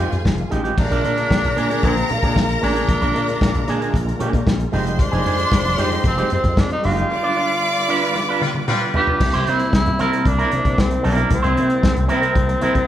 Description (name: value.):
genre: disco.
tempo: 114 BPM.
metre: 4/4.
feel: straight.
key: unclear.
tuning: A4 = 436 Hz.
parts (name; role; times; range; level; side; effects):
breathy tenor saxophone; melody; 0.0-12.9 s; Bb3 to G4; -22 LUFS; equal; none.
clear symphonic string section; second line; 0.0-8.9 s; Ab4 to D6; -25 LUFS; left 1 dB; none.
electric guitar with an envelope filter; accompaniment; 0.0-12.8 s; Ab3 to D5; -23 LUFS; right 2 dB; none.
tonewheel organ; sustained chords; 0.0-12.9 s; C3 to F4; -28 LUFS; left 1 dB; chorus vibrato, fast rotary speaker.
slap bass with an envelope filter; bass; 0.0-12.8 s; F1 to C3; -22 LUFS; equal; none.
warm soul drum kit; drums; 0.1-12.9 s; crash cymbal, hi-hat, kick drum, snare drum, toms; -21 LUFS; equal; none.
clear horn section; stabs; 8.4-9.1 s; G3 to B4; -23 LUFS; left 2 dB; none.
room: moderate large studio reverb, RT60 1.3 s.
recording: band playing live in one room.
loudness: -16 LUFS.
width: side -11 dB against mid.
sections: 0.8-9.2 A section; 9.2-12.9 B section.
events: band accent 7.1-9.2; drum fill 8.2-9.2.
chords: 0.0 Fm9; 0.8 Bb7; 4.7 Fm9; 7.1 G7; 9.2 C7.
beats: 0.25 | 0.78 1.30 1.83 2.36 | 2.88 3.41 3.94 4.46 | 4.99 5.52 6.04 6.57 | 7.10 7.62 8.15 8.68 | 9.20 9.73 10.26 10.78 | 11.31 11.83 12.36.